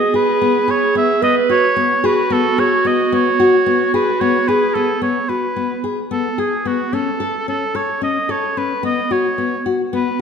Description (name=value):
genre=contemporary instrumental, chamber music in an uneven meter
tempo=220 BPM (eighths)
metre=7/8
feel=straight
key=unclear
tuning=A4 = 440 Hz
part: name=warm oboe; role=melody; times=0.0-10.2 s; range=F#4 to E5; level=-19 LUFS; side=right 1 dB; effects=none
part: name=warm clarinet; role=second line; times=0.0-5.0 s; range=F#4 to B4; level=-18 LUFS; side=right 4 dB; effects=none
part: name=nylon-string guitar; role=arpeggios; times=0.1-10.1 s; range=B3 to A4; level=-18 LUFS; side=left 3 dB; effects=none
room=wet scoring stage reverb, RT60 1.7 s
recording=none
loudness=-14 LUFS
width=side -6 dB against mid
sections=0.0-5.0 A section; 5.0-10.2 B section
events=none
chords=0.0 Bsus2; 6.9 A; 8.8 B5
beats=0.14 0.41 0.68 0.95 | 1.23 1.50 1.77 2.04 2.31 2.58 2.85 | 3.12 3.40 3.67 3.94 4.21 4.48 4.76 | 5.03 5.30 5.57 5.84 6.12 6.39 6.66 | 6.93 7.21 7.48 7.75 8.02 8.30 8.57 | 8.84 9.11 9.39 9.66 9.93 10.20